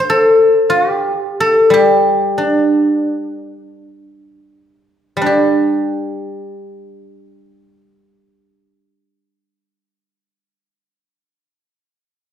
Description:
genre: chinese traditional, Chinese solo plucked strings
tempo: free time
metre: none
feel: none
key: unclear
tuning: A4 = 445 Hz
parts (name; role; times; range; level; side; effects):
- guzheng; solo; 0.0-11.2 s; G3 to C5; -12 LUFS; equal; none
room: wet recital hall reverb, RT60 1.5 s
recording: recorded in a church or concert hall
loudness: -11 LUFS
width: side -9 dB against mid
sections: 0.0-5.3 A section; 5.3-10.0 B section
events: slowing down 0.0-5.3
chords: none

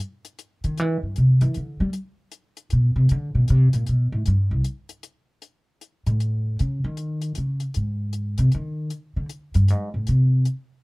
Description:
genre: jazz piano trio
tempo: 155 BPM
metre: 3/4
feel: swing 64% on 8ths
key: C major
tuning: A4 = 435 Hz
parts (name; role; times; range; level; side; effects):
- hi-hat; drums; 0.0-10.6 s; none; -41 LUFS; left 7 dB; none
- upright bass; bass; 0.6-10.4 s; C2 to G3; -19 LUFS; equal; none
room: little or no reverb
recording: dark, warm production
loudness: -20 LUFS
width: side -26 dB against mid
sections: 0.0-5.4 A section; 5.4-10.8 A section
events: upright bass solo 0.0-10.8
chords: none

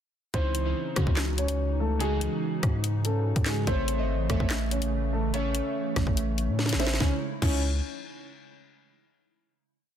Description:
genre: hip hop, drill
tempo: 144 BPM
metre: 4/4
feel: half-time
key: C# harmonic minor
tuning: A4 = 443 Hz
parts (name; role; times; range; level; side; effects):
- dark concert grand piano; melody; 0.3-7.6 s; G#3 to C#5; -32 LUFS; left 1 dB; low-pass filter, ping-pong delay
- glassy digital keys; accompaniment; 0.3-7.6 s; C#3 to E5; -35 LUFS; right 3 dB; chorus, low-pass filter
- hollow soft pad; sustained chords; 0.3-7.2 s; C#3 to E4; -35 LUFS; right 4 dB; ensemble chorus
- long sustained 808-style bass; bass; 0.3-7.8 s; G#1 to C#3; -28 LUFS; equal; none
- drill drum kit; drums; 0.3-7.5 s; crash cymbal, handclaps, hi-hat, kick drum, rim click, snare drum; -28 LUFS; equal; none
room: light reverb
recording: dense, heavily limited modern master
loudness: -25 LUFS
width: side -9 dB against mid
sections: 0.3-7.0 hook; 7.0-8.7 final chord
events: drum fill 6.6-7.0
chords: 0.3 C#madd9; 3.7 A; 7.0 C#madd9

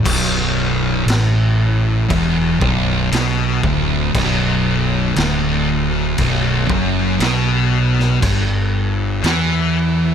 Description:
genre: stoner and doom metal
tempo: 59 BPM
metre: 4/4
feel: straight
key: B minor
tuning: A4 = 440 Hz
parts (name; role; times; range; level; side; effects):
- thick fuzz guitar; riff; 0.0-10.1 s; B1 to E3; -20 LUFS; left 9 dB; distortion
- thick fuzz guitar; riff; 0.0-10.1 s; B1 to E3; -18 LUFS; right 7 dB; distortion
- fuzz fingered electric bass; bass; 0.1-10.1 s; B0 to E2; -22 LUFS; left 1 dB; overdrive
- raw garage drum kit; drums; 0.1-9.5 s; crash cymbal, kick drum, snare drum; -22 LUFS; left 1 dB; none
room: light reverb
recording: none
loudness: -14 LUFS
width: side -8 dB against mid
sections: 0.0-10.1 A section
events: none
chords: 0.0 Bm; 8.2 G5

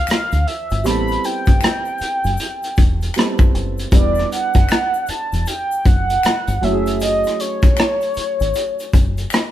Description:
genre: R&B, neo-soul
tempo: 78 BPM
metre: 4/4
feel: swing 63% on 16ths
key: E dorian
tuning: A4 = 441 Hz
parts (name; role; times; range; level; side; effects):
- mellow horn-like synth lead; melody; 0.0-9.5 s; C#5 to B5; -20 LUFS; right 1 dB; chorus
- warm grand piano; accompaniment; 0.0-9.5 s; E3 to A4; -25 LUFS; right 3 dB; none
- deep dub fingered electric bass; bass; 0.1-9.2 s; E1 to D2; -21 LUFS; equal; none
- crunchy breakbeat drum kit; drums; 0.1-9.5 s; hi-hat, kick drum, rim click; -16 LUFS; equal; none
- finger snaps and egg shaker; percussion; 0.1-9.5 s; none; -34 LUFS; left 5 dB; none
room: light reverb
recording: band playing live in one room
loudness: -15 LUFS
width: side -12 dB against mid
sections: 0.0-9.5 A section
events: none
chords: 0.0 Dm9; 0.8 Am9; 3.9 Em9; 6.6 F#m9

